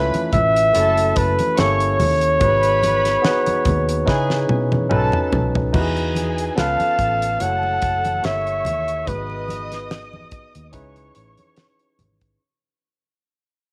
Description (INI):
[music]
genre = lush 1970s-style soul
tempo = 72 BPM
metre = 4/4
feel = swing 54% on 16ths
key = unclear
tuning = A4 = 439 Hz
[part]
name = muted chamber string section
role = second line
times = 0.0-12.4 s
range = G#4 to D#6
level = -31 LUFS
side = equal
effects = none
[part]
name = barky tine electric piano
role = accompaniment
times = 0.0-12.4 s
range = A3 to C#5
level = -26 LUFS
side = equal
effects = overdrive
[part]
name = vintage muted fingered electric bass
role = bass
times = 0.0-12.4 s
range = F#1 to C#3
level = -26 LUFS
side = equal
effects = none
[part]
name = damped 70s drum kit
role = drums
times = 0.1-12.4 s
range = crash cymbal, hi-hat, kick drum, snare drum, toms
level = -27 LUFS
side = equal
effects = none
[part]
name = congas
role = percussion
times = 0.1-12.2 s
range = none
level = -30 LUFS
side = equal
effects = none
[part]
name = warm flugelhorn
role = melody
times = 0.3-9.9 s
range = B4 to F#5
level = -21 LUFS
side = equal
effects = none
[sound]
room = light reverb, studio ambience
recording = none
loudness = -19 LUFS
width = mono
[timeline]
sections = 0.0-5.7 A section; 5.7-12.4 B section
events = drum fill 4.1-5.7; fade-out 5.7-12.4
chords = 0.0 C#7alt; 0.7 F#m7; 1.6 Gdim7; 2.4 G#m7; 4.1 C#m9; 4.9 B9; 5.7 Emaj9; 6.6 C#aug7; 7.4 F#m7; 8.2 Gdim7; 9.1 G#m7; 10.7 C#m9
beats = 0.75 1.58 | 2.41 3.24 4.07 4.91 | 5.74 6.57 7.40 8.24 | 9.07 9.90 10.73 11.57